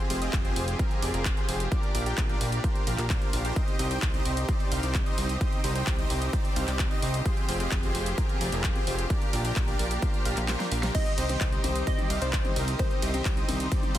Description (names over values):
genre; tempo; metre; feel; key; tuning
EDM, festival progressive house; 130 BPM; 4/4; straight; C minor; A4 = 440 Hz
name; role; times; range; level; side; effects
rich symphonic string section; sustained chords; 0.0-14.0 s; C3 to Ab4; -38 LUFS; equal; sidechain pumping
supersaw chords; riff; 0.0-14.0 s; C4 to G5; -32 LUFS; right 1 dB; sidechain pumping, dub echo
fat analog bass; bass; 0.1-14.0 s; F1 to C2; -30 LUFS; equal; sidechain pumping
big-room dance drum kit; drums; 0.1-14.0 s; crash cymbal, handclaps, hi-hat, ride cymbal, snare drum; -34 LUFS; equal; overdrive
electronic kick drum; drums; 0.3-13.8 s; none; -28 LUFS; equal; none
glassy wavetable pluck; melody; 10.9-14.0 s; Bb4 to Eb5; -34 LUFS; left 1 dB; chorus, dub echo
felt-muted upright piano; accompaniment; 10.9-13.9 s; Eb3 to G4; -38 LUFS; left 3 dB; sidechain pumping
room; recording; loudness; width
digital ambience; dense, heavily limited modern master; -25 LUFS; side -12 dB against mid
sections
0.0-14.0 A section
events
kick drops out 10.5-10.9; drum fill 10.5-10.9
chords
0.0 Fmadd9; 1.7 Bb6; 3.6 Cm; 7.3 Fmadd9; 9.1 Bb6; 10.9 Cm